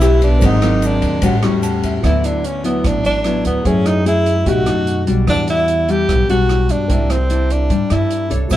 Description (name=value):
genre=bossa nova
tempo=148 BPM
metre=4/4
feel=straight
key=D major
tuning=A4 = 439 Hz
part: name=breathy tenor saxophone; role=melody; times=0.0-8.6 s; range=B3 to G4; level=-19 LUFS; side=equal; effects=none
part: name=dark baby grand piano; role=accompaniment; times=0.0-8.6 s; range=F#4 to Eb6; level=-30 LUFS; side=right 4 dB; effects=none
part: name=nylon-string guitar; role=accompaniment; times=0.0-8.6 s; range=Ab2 to C#5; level=-18 LUFS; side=left 2 dB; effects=none
part: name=upright bass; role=bass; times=0.0-8.6 s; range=Ab1 to G2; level=-18 LUFS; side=equal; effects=none
part: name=open jazz drum kit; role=drums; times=0.0-8.6 s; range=hi-hat, kick drum, ride cymbal, rim click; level=-23 LUFS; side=equal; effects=none
part: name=tube shaker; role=percussion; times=0.0-2.0, 8.5-8.6 s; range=none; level=-36 LUFS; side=right 5 dB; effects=none
room=moderate plate reverb, RT60 1.5 s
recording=heard from further back in the room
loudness=-13 LUFS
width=side -13 dB against mid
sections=0.0-2.0 A section; 2.0-8.6 B section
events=tenor saxophone solo 0.0-2.0; grand piano fill 1.2-2.0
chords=0.4 Ab9; 1.2 A13; 2.0 D69; 3.7 F#m9; 4.5 B7b13; 5.3 Em9; 6.9 C9